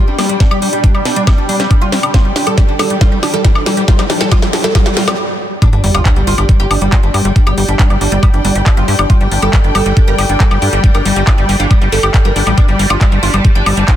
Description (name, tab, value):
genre	psychedelic trance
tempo	138 BPM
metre	4/4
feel	straight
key	unclear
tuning	A4 = 439 Hz
part	oud	melody	0.0-13.9 s	G3 to Bb4	-21 LUFS	right 2 dB	phaser, sidechain pumping, dub echo
part	bubbling stepped-filter texture	sustained chords	0.0-14.0 s	G3	-22 LUFS	right 1 dB	chorus, built-in reverb, sidechain pumping
part	liquid acid bass	riff	0.0-14.0 s	G3 to G4	-18 LUFS	moving between left 4 dB and right 4 dB	chorus, auto-pan, cassette tape, sidechain pumping, digital delay
part	riser and sub drop	sound effects	0.8-7.4 s	none	-22 LUFS	equal	none
part	warm chamber string section	texture	0.0-14.0 s	G4 to A5	-24 LUFS	left 2 dB	sidechain pumping
part	vowel-sweep wobble bass	second line	0.1-5.1 s	C4 to D4	-32 LUFS	left 3 dB	none
part	drum and bass drum kit	drums	0.2-14.0 s	handclaps, hi-hat, snare drum, woodblock	-18 LUFS	left 1 dB	none
part	electronic kick drum	drums	0.4-14.0 s	none	-10 LUFS	equal	none
part	tight sequencer bass	bass	5.7-13.8 s	G1 to G2	-15 LUFS	equal	tube saturation
room	little or no reverb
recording	dense, heavily limited modern master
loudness	-9 LUFS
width	side -12 dB against mid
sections	0.0-5.6 A section; 5.6-14.0 B section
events	build-up 0.0-5.6; drum fill 0.0-5.2; filter sweep on acid bass 0.0-5.6; riser 0.8-5.2; stop 5.2-5.6; drop 5.6-14.0; impact 5.6-7.4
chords	0.0 G5